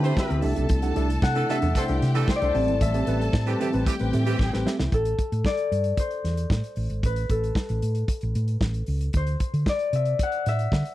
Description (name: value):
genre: disco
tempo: 114 BPM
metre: 4/4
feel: straight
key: A dorian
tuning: A4 = 440 Hz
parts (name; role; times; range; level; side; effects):
- concert harp; melody; 0.0-10.9 s; A4 to A5; -29 LUFS; left 3 dB; none
- clear studio string section; second line; 0.0-4.9 s; G4 to B5; -34 LUFS; left 1 dB; none
- mellow electric guitar; accompaniment; 0.0-4.8 s; C4 to F#5; -30 LUFS; right 6 dB; none
- warm grand piano; accompaniment; 0.0-4.9 s; A2 to B4; -32 LUFS; left 4 dB; none
- percussive tonewheel organ; sustained chords; 0.0-4.9 s; C3 to G4; -31 LUFS; left 2 dB; chorus vibrato, slow rotary speaker
- warm horn section; stabs; 0.0-4.6 s; E3 to C5; -30 LUFS; right 6 dB; none
- hollow-body short-scale fingered electric bass; bass; 0.0-10.8 s; G#1 to D3; -25 LUFS; equal; none
- warm soul drum kit; drums; 0.0-10.9 s; hi-hat, kick drum, snare drum; -26 LUFS; equal; none
room: little or no reverb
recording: dry, close 1970s-style studio recording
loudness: -22 LUFS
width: side -15 dB against mid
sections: 0.0-4.9 A section; 4.9-10.9 B section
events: drum fill 4.4-4.9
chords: 0.4 C69; 2.5 Am7; 4.9 Am; 9.1 D5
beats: 0.17 | 0.70 1.23 1.75 2.28 | 2.81 3.33 3.86 4.39 | 4.92 5.44 5.97 6.50 | 7.03 7.55 8.08 8.61 | 9.14 9.66 10.19 10.72